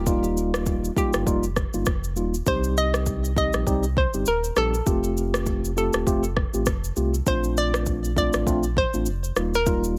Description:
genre	afrobeats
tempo	100 BPM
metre	4/4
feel	swing 58% on 16ths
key	unclear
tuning	A4 = 441 Hz
part	hollow square pluck	melody	0.0-10.0 s	G4 to Eb5	-29 LUFS	equal	chorus, digital delay
part	mellow tine electric piano	accompaniment	0.0-10.0 s	G3 to G4	-28 LUFS	equal	none
part	sub bass with octave	bass	0.0-10.0 s	Eb1 to C2	-30 LUFS	equal	none
part	afro-pop drum kit	drums	0.1-10.0 s	kick drum, rim click, shaker	-28 LUFS	equal	none
room	little or no reverb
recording	none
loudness	-24 LUFS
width	mono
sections	0.0-10.0 A section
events	none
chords	0.0 Ebadd9; 2.5 Cm; 4.9 Fadd9; 7.3 Bbmaj7; 9.4 Ebadd9

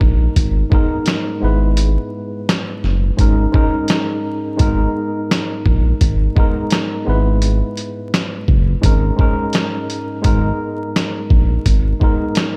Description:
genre	hip hop, boom-bap hip-hop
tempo	85 BPM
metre	4/4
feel	swing 59% on 16ths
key	G# minor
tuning	A4 = 439 Hz
part	tine electric piano	accompaniment	0.0-12.6 s	G#2 to B4	-23 LUFS	equal	overdrive, cassette tape, high-pass filter, low-pass filter
part	smooth synth bass	bass	0.0-11.9 s	F#1 to A#1	-18 LUFS	equal	none
part	trip hop sampler-style drum kit	drums	0.0-12.6 s	hi-hat, kick drum, snare drum	-19 LUFS	equal	none
room	digital ambience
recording	dark, warm production, vinyl crackle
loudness	-17 LUFS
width	mono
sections	0.0-12.6 A section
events	none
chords	0.0 G#madd9; 1.4 E/G#; 3.2 D#7sus4/G#; 4.6 G#madd9; 7.1 E/G#; 8.8 D#7sus4/G#; 10.2 G#madd9

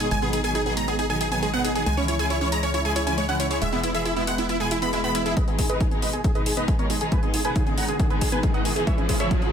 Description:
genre	uplifting trance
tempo	137 BPM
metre	4/4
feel	straight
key	G# minor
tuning	A4 = 444 Hz
part	big supersaw lead	melody	0.0-9.5 s	E4 to B5	-26 LUFS	right 1 dB	sidechain pumping, low-pass filter, ping-pong delay
part	rich chamber string section	sustained chords	0.0-9.5 s	B2 to E4	-30 LUFS	left 2 dB	sidechain pumping
part	wide unison pluck	arpeggios	0.0-9.5 s	G#3 to G#4	-29 LUFS	right 3 dB	sidechain pumping, ping-pong delay
part	tight sequencer bass	bass	0.0-9.3 s	E1 to C#2	-30 LUFS	equal	sidechain pumping, high-pass filter
part	electronic hi-hat	drums	0.0-9.5 s	none	-33 LUFS	left 1 dB	high-pass filter on hats, studio reverb
part	electronic kick drum	drums	5.4-9.4 s	none	-23 LUFS	equal	studio reverb
part	riser	sound effects	6.8-9.5 s	none	-32 LUFS	right 1 dB	none
room	light reverb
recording	none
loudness	-21 LUFS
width	side -8 dB against mid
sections	0.0-5.4 A section; 5.4-9.5 B section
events	build-up 5.4-9.5; filter sweep on supersaw synth 5.4-9.5; riser 6.8-9.5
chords	0.0 G#m; 1.9 C#m; 3.6 E; 5.4 G#m; 8.9 C#m

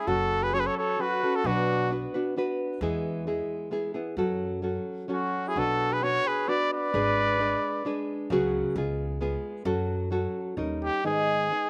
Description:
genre	mexican folk, mariachi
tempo	132 BPM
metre	3/4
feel	rubato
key	F# minor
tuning	A4 = 440 Hz
part	clear trumpet	melody	0.0-1.9, 5.1-8.1, 10.8-11.7 s	F#4 to D5	-29 LUFS	equal	none
part	mellow trumpet	second line	0.0-1.9, 5.1-8.1 s	C#4 to B4	-34 LUFS	equal	slapback echo
part	nylon-string guitar	accompaniment	0.0-11.7 s	G#2 to B4	-32 LUFS	equal	slapback echo
part	upright bass	bass	0.1-10.9 s	F#1 to F#2	-36 LUFS	equal	none
room	little or no reverb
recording	recorded outdoors, with no room sound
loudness	-28 LUFS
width	mono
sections	0.1-11.0 A section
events	none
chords	0.1 F#m; 1.4 Bm; 2.8 E; 4.2 F#m; 5.6 Bm; 6.9 G#dim; 8.3 C#7sus4; 8.8 C#7; 9.7 F#m; 10.6 D#7; 11.0 G#m

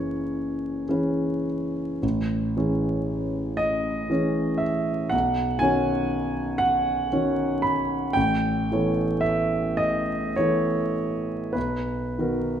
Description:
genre	classical, impressionist solo piano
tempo	32-40 BPM (dotted quarters)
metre	6/8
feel	rubato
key	B major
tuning	A4 = 438 Hz
part	warm concert grand piano	solo	0.0-12.6 s	F#1 to B5	-22 LUFS	equal	none
room	moderate recital hall reverb, RT60 1.4 s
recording	minimal, uncompressed stereo recording, vinyl crackle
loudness	-22 LUFS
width	side -9 dB against mid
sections	0.0-12.6 A section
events	none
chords	0.0 F#9sus4; 2.0 Amaj7; 5.1 Badd9; 8.2 A9; 11.6 Bmaj7

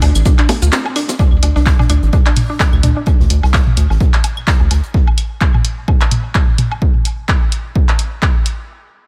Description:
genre	minimal techno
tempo	128 BPM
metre	4/4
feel	swing 56% on 16ths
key	unclear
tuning	A4 = 440 Hz
part	mallet-like synth pluck	riff	0.0-3.0 s	A3 to F4	-24 LUFS	equal	chorus, phaser, sidechain pumping, tape echo
part	rubbery square bass	bass	0.0-4.8 s	A1 to D2	-15 LUFS	equal	tube saturation, sidechain pumping
part	open jazz drum kit	drums	0.0-4.9 s	hi-hat, snare drum	-36 LUFS	equal	sidechain pumping on hats, high-pass filter on hats, high-pass filter on snare, high-pass filter on room, tape echo
part	punchy analog drum machine	drums	0.0-8.6 s	cabasa, handclaps, hi-hat	-23 LUFS	equal	none
part	electronic woodblock, claves, bongos and toms	percussion	0.0-6.8 s	none	-23 LUFS	equal	tape echo
part	electronic kick drum	drums	0.3-8.3 s	none	-16 LUFS	equal	none
room	little or no reverb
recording	echo-heavy mix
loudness	-14 LUFS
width	mono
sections	0.0-1.2 A section; 1.2-8.7 B section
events	drop 0.0-1.2; break 0.7-1.2; filter sweep on synth arpeggio sound 1.2-3.1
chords	0.0 D5

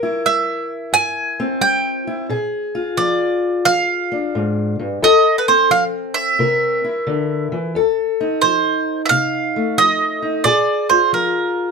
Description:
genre	acoustic country blues, solo or duo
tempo	88 BPM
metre	4/4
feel	swing 66% on 8ths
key	unclear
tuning	A4 = 445 Hz
part	fingerpicked steel-string acoustic guitar	accompaniment	0.0-11.7 s	F2 to Bb4	-19 LUFS	left 4 dB	none
part	bowl-back mandolin	melody	0.3-11.7 s	Bb4 to Ab5	-16 LUFS	right 4 dB	none
room	light reverb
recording	none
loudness	-15 LUFS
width	side -4 dB against mid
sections	0.0-7.7 A section; 7.7-11.7 A section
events	none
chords	0.0 C7; 2.3 Bb7; 5.0 F; 6.4 C7; 7.7 F7; 10.5 Bb7

